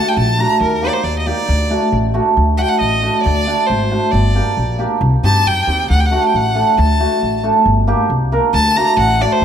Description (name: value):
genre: klezmer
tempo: 136 BPM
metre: 2/4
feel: straight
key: D phrygian dominant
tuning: A4 = 440 Hz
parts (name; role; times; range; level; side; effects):
- clear violin; melody; 0.0-9.4 s; Bb4 to Bb5; -18 LUFS; left 1 dB; none
- cimbalom; accompaniment; 0.0-9.3 s; A3 to Bb4; -16 LUFS; right 2 dB; none
- upright bass; bass; 0.2-9.4 s; G1 to G2; -17 LUFS; equal; none
room: moderate recital hall reverb, RT60 1.6 s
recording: none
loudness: -12 LUFS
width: side -8 dB against mid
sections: 0.0-2.4 A section; 2.4-9.4 B section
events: violin solo 2.4-9.4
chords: 0.0 D; 0.6 Eb; 1.5 D; 4.1 Gm; 5.0 Cm; 5.9 D; 7.7 Gm; 8.5 D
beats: 0.17 | 0.61 1.05 | 1.49 1.93 | 2.37 2.81 | 3.25 3.69 | 4.13 4.57 | 5.02 5.46 | 5.90 6.34 | 6.78 7.22 | 7.66 8.11 | 8.55 8.99 | 9.43